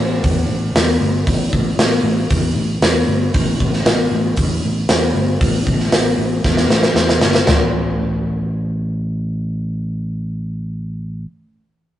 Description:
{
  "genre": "hard rock",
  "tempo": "116 BPM",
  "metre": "4/4",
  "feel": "straight",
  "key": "unclear",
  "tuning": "A4 = 440 Hz",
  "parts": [
    { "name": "fingered electric bass", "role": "bass", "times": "0.0-11.2 s", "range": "G1 to E2", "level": "-20 LUFS", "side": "equal", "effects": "none" },
    { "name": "big rock drum kit", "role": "drums", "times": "0.2-7.6 s", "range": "hi-hat, kick drum, snare drum, toms", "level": "-15 LUFS", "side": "equal", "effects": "none" }
  ],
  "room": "light reverb",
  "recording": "rough rehearsal-room recording, nothing above 10.9 kHz",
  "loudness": "-15 LUFS",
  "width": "side -12 dB against mid",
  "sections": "0.0-7.5 A section; 7.5-11.6 B section",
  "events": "drum fill 6.4-7.5",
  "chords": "none",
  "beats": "0.24 0.76 | 1.27 1.79 2.31 2.82 | 3.34 3.85 4.37 4.89 | 5.40 5.92 6.44 6.96 | 7.47 7.99 8.51 9.03 | 9.55 10.07 10.59 11.11"
}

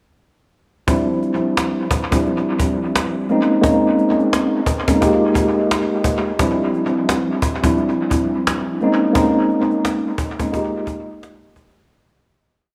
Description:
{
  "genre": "hip hop, boom-bap hip-hop",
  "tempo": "87 BPM",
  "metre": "4/4",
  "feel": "swing 60% on 16ths",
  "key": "unclear",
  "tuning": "A4 = 440 Hz",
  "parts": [
    { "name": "mellow tine electric piano", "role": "accompaniment", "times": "0.9-11.8 s", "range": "F3 to G4", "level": "-19 LUFS", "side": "equal", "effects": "high-pass filter, low-pass filter, dub echo" },
    { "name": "cajon", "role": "drums", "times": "0.9-11.8 s", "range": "none", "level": "-24 LUFS", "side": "equal", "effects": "dub echo" }
  ],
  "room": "moderate plate reverb, RT60 1.7 s, small room ambience",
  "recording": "echo-heavy mix",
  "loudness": "-18 LUFS",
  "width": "mono",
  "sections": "0.9-11.9 verse",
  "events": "fade-out 9.2-11.9",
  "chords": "0.9 Dm11; 3.3 Bbm11; 5.0 Fm11; 6.4 Dm11; 8.8 Bbm11; 10.5 Fm11",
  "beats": "| 0.88 1.57 2.26 2.95 | 3.64 4.33 5.02 5.71 | 6.40 7.09 7.78 8.46 | 9.15 9.84 10.53 11.22"
}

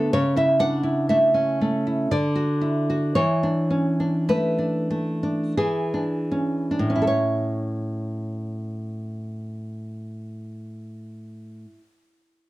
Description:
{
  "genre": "romantic piece for solo classical guitar",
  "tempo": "38-64 BPM",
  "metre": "3/4",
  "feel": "rubato",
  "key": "A major",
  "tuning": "A4 = 440 Hz",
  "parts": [
    { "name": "nylon-string guitar", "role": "solo", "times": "0.0-11.9 s", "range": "A2 to F#5", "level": "-22 LUFS", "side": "equal", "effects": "none" }
  ],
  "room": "wet studio reverb, RT60 0.5 s",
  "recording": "none",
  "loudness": "-21 LUFS",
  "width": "side -17 dB against mid",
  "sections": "0.0-7.1 A section; 7.1-11.5 B section",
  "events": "slowing down 0.0-7.1",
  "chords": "0.1 A/C#; 2.1 D; 3.1 E7sus4; 5.6 E6; 7.1 A",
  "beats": "| 0.12 1.08 2.09 | 3.15 4.28 5.57 | 7.08 8.55 10.03"
}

